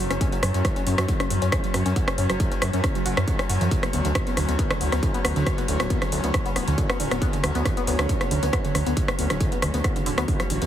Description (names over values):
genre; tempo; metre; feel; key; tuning
driving peak-time techno; 137 BPM; 4/4; straight; unclear; A4 = 440 Hz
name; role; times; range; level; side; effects
tight sequenced synth; riff; 0.0-10.7 s; D3 to F#4; -29 LUFS; equal; chorus, phaser, vintage 12-bit sampler grit, sidechain pumping, tape echo
detuned saw bass; bass; 0.0-10.7 s; D1 to F#2; -25 LUFS; equal; sidechain pumping
metallic inharmonic drone; drone; 0.0-10.7 s; F#3 to C#4; -30 LUFS; left 1 dB; chorus, built-in reverb, sidechain pumping
techno drum kit; drums; 0.1-10.7 s; hi-hat, rim click; -27 LUFS; equal; sidechain pumping on hats, sidechain pumping on cymbals
electronic kick drum; drums; 0.2-10.4 s; none; -25 LUFS; equal; distortion
room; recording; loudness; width
light reverb, digital ambience; heavily compressed radio sound; -21 LUFS; side -11 dB against mid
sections
0.0-10.7 A section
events
none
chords
0.0 F#5; 3.7 N.C.